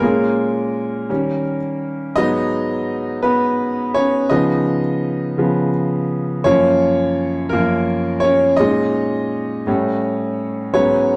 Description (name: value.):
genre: R&B.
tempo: 56 BPM (dotted quarters).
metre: 6/8.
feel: straight.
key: G# minor.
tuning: A4 = 437 Hz.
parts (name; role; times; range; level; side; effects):
clear concert grand piano; solo; 0.0-11.2 s; F#2 to D#5; -18 LUFS; equal; none.
room: moderate stone room reverb, RT60 1.1 s.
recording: band playing live in one room.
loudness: -18 LUFS.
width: mono.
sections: 0.0-2.2 A section; 2.2-11.2 B section.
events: grand piano solo 0.0-2.2, 2.2-11.2.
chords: 0.0 A#m7; 1.1 D#7; 2.2 G#m7; 4.3 C#9; 6.5 F#maj7; 8.6 A#m7; 9.7 A7#11.